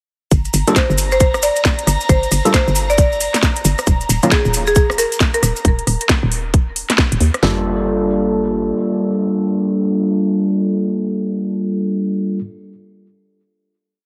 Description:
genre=UK garage, two-step garage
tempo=135 BPM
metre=4/4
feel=swing 62% on 16ths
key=G minor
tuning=A4 = 438 Hz
part: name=airy breathy pad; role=sustained chords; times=0.3-5.7 s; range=Bb5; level=-29 LUFS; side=equal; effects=chorus, phaser, sidechain pumping
part: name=hollow knocking FM bass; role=bass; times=0.3-8.7 s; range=Eb1 to Eb2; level=-21 LUFS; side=equal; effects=none
part: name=garage drum kit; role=drums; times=0.3-7.6 s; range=kick drum, snare drum, toms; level=-18 LUFS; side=equal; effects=none
part: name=garage drum kit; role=drums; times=0.3-7.4 s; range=hi-hat, rim click, snare drum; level=-22 LUFS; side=equal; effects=none
part: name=maracas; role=percussion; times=0.3-5.6 s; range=none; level=-27 LUFS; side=equal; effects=none
part: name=overdriven tine electric piano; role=stabs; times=0.7-4.3, 7.4-12.4 s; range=Eb3 to A4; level=-19 LUFS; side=equal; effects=lush chorus, delay
part: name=buzzing marimba with medium hard mallets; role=melody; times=0.8-5.5 s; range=Ab4 to D5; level=-22 LUFS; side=equal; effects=delay
room=light reverb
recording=heavily compressed radio sound, multiband compression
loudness=-16 LUFS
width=mono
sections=0.3-7.4 drop; 7.4-11.0 final chord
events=drop 0.3-7.4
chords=0.3 Gm; 3.9 Eb5; 7.4 Gm9

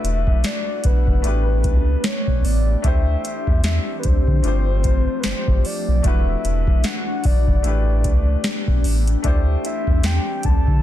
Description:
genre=contemporary R&B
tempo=75 BPM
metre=4/4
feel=swing 58% on 16ths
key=unclear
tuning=A4 = 439 Hz
part: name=soft octave-layered synth lead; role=melody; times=0.0-10.8 s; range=B4 to A5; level=-28 LUFS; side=left 2 dB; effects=chorus, ping-pong delay
part: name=clear concert grand piano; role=accompaniment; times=0.0-10.8 s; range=A3 to C5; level=-29 LUFS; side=left 4 dB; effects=none
part: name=glassy FM pad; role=sustained chords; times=0.0-10.8 s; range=E3 to G4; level=-28 LUFS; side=left 2 dB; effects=ensemble chorus, built-in reverb, phaser
part: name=warm sub bass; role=bass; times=0.0-10.8 s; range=E1 to D3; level=-19 LUFS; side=equal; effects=none
part: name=booming analog drum machine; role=drums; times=0.0-10.8 s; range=hi-hat, kick drum, snare drum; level=-19 LUFS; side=equal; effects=overdrive
room=little or no reverb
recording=dense, heavily limited modern master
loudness=-17 LUFS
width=side -12 dB against mid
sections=0.0-10.8 A section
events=none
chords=0.0 E9sus4; 1.2 A9sus4; 2.8 D9sus4; 4.4 G9sus4; 6.0 E9sus4; 7.6 A9sus4; 9.2 D9sus4

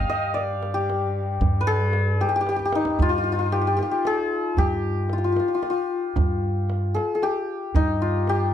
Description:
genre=Persian modal ensemble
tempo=114 BPM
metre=3/4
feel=straight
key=G dastgah homayun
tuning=A4 = 440 Hz
part: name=santur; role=melody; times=0.0-8.5 s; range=Eb4 to G5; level=-23 LUFS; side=left 3 dB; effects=none
part: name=upright bass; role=bass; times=0.0-8.5 s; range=G2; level=-24 LUFS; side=equal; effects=none
part: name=muted cello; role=drone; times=0.0-3.0 s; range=G2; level=-30 LUFS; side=equal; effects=none
part: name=tombak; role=percussion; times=0.1-8.5 s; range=none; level=-27 LUFS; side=right 2 dB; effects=none
room=light reverb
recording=close, detailed microphones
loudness=-21 LUFS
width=side -10 dB against mid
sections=0.0-3.0 A section; 3.0-8.5 B section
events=drum fill 2.5-3.0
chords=none

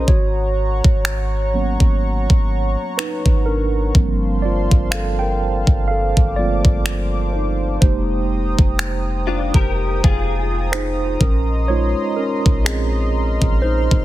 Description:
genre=contemporary R&B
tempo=62 BPM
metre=4/4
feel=swing 58% on 16ths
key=G phrygian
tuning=A4 = 437 Hz
part: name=mellow tine electric piano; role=accompaniment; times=0.0-14.0 s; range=F3 to G5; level=-23 LUFS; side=right 2 dB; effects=medium stereo tremolo
part: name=warm analog pad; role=sustained chords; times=0.0-14.0 s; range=C5 to F6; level=-27 LUFS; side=right 1 dB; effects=chorus
part: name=clean 808-style bass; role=bass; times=0.0-14.0 s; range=F1 to Bb1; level=-20 LUFS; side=equal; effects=none
part: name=trap drum kit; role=drums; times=0.1-14.0 s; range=finger snaps, kick drum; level=-16 LUFS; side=equal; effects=overdrive, soft clipping on snare
part: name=direct-recorded clean electric guitar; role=arpeggios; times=9.3-11.2 s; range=D4 to Bb4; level=-25 LUFS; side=left 8 dB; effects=ensemble chorus, tape echo
room=digital ambience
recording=dense, heavily limited modern master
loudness=-16 LUFS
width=side -15 dB against mid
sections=0.0-14.0 A section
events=tine electric piano solo 0.0-14.0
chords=0.1 Abm11; 4.0 Gm11; 7.8 Fm11; 11.2 Bbm11

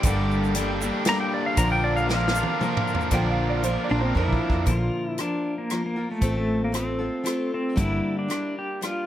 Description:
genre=folk rock and heartland rock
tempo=116 BPM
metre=3/4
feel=straight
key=unclear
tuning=A4 = 440 Hz
part: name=pedal steel guitar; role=melody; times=0.0-9.1 s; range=A3 to Bb5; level=-28 LUFS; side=equal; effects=analog delay
part: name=picked steel-string acoustic guitar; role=accompaniment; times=0.0-9.1 s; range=G2 to Bb4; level=-28 LUFS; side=left 3 dB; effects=none
part: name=musette accordion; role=sustained chords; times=0.0-4.7 s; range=Bb4 to D6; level=-38 LUFS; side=right 2 dB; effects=none
part: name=cranked stack guitar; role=riff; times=0.0-4.7 s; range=G2 to G4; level=-28 LUFS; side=right 2 dB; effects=overdrive
part: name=hollow-body short-scale fingered electric bass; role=bass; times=0.0-8.0 s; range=G1 to F2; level=-27 LUFS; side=equal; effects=none
part: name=natural country drum kit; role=drums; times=0.0-8.9 s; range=hi-hat, kick drum, rim click, snare drum, toms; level=-26 LUFS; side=equal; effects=none
part: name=egg shaker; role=percussion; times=0.1-3.1 s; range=none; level=-39 LUFS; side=right 9 dB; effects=none
part: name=bright upright piano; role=second line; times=3.1-4.5 s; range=Bb4 to G5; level=-31 LUFS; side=right 7 dB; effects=none
room=light reverb, studio ambience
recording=none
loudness=-22 LUFS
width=side -12 dB against mid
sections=0.0-3.1 A section; 3.1-4.7 B section; 4.7-9.1 C section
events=pedal steel guitar solo 0.0-3.1; drum fill 2.1-3.1, 4.2-4.7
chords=0.0 Gmadd9; 1.6 Bb; 6.2 F/A; 7.8 Gm

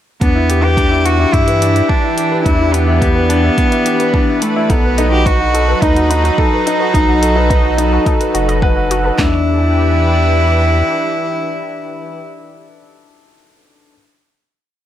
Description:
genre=piano and strings electronica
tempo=107 BPM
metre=4/4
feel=straight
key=E minor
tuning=A4 = 438 Hz
part: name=rich cello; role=melody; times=0.2-12.2 s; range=A3 to G4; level=-17 LUFS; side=right 1 dB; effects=none
part: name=lush unison pad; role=sustained chords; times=0.2-12.2 s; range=E3 to B4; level=-21 LUFS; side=equal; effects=chorus, sidechain pumping
part: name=dark concert grand piano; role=riff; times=0.2-13.9 s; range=D4 to F#5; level=-18 LUFS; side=left 2 dB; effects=none
part: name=round analog bass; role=bass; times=0.2-10.8 s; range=F#1 to G2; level=-15 LUFS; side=equal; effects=tube saturation, sidechain pumping
part: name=deep house drum kit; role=drums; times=0.2-9.3 s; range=handclaps, kick drum, snare drum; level=-15 LUFS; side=equal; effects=none
part: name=electronic hi-hat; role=drums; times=0.2-9.0 s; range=none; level=-25 LUFS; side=left 2 dB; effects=none
part: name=warbly dusty pluck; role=arpeggios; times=4.7-9.5 s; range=D4 to F#5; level=-24 LUFS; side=left 3 dB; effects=none
room=light reverb, digital ambience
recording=none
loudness=-11 LUFS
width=side -11 dB against mid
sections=0.2-9.2 drop; 9.2-11.4 final chord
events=drop 0.2-9.2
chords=0.2 Em7; 4.7 B7; 9.2 Em7

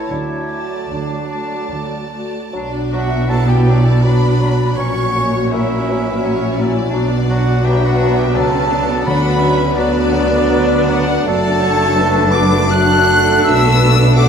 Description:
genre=classical, slow romantic movement for symphony orchestra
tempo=71-88 BPM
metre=3/4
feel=rubato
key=B minor, D major from 11.3 s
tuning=A4 = 441 Hz
part: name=dark chamber violin section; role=melody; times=0.0-14.3 s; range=D5 to F#6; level=-23 LUFS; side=left 4 dB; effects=none
part: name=bright clarinet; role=second line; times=0.0-14.3 s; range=B3 to E4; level=-26 LUFS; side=equal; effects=none
part: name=mellow concert flute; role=second line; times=0.0-14.3 s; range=D5 to F#6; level=-23 LUFS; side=equal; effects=none
part: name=warm chamber violin section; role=second line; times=0.0-14.3 s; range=A4 to A5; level=-26 LUFS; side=left 2 dB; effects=none
part: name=warm studio viola section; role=accompaniment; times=0.0-14.3 s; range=A3 to B4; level=-23 LUFS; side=equal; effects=none
part: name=clear oboe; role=second line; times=0.1-14.3 s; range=D4 to F#5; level=-24 LUFS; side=right 2 dB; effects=none
part: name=mellow bassoon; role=accompaniment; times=0.1-14.3 s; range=F#3 to A3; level=-25 LUFS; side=right 1 dB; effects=none
part: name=warm French horn section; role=sustained chords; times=0.1-14.3 s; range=F#3 to F#4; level=-22 LUFS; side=left 3 dB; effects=none
part: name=rich studio cello section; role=bass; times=0.1-14.3 s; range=F#2 to D3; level=-22 LUFS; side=right 1 dB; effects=none
part: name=warm chamber double bass section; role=bass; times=0.1-14.3 s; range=F#1 to D2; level=-18 LUFS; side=right 1 dB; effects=none
part: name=clear trombone section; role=sustained chords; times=2.5-14.3 s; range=F#3 to C#4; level=-24 LUFS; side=right 4 dB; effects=none
part: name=timpani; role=percussion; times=9.1-10.1 s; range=D3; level=-23 LUFS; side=left 2 dB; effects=none
room=wet scoring stage reverb, RT60 1.9 s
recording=none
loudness=-12 LUFS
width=side -7 dB against mid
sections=0.0-2.5 A section; 2.5-14.3 B section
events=none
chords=0.1 D; 2.5 Bm; 4.8 F#7/A#; 6.9 Bm; 9.1 Bm/D; 11.3 D/F#; 13.4 Bm7

